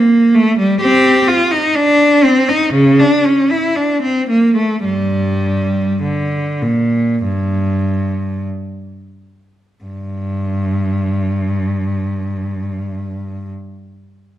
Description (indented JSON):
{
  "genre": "classical, baroque-style suite movement for unaccompanied cello",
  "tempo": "44-67 BPM",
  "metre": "4/4",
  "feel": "rubato",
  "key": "G minor",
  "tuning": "A4 = 438 Hz",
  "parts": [
    { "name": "clear cello", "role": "solo", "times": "0.0-13.5 s", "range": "G2 to G4", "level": "-13 LUFS", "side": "equal", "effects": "none" }
  ],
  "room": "moderate recital hall reverb, RT60 1.5 s",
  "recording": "dark, warm production",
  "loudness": "-12 LUFS",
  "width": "side -12 dB against mid",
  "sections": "0.0-9.8 A section; 9.8-14.4 B section",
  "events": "slowing down 0.0-9.8",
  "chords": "none"
}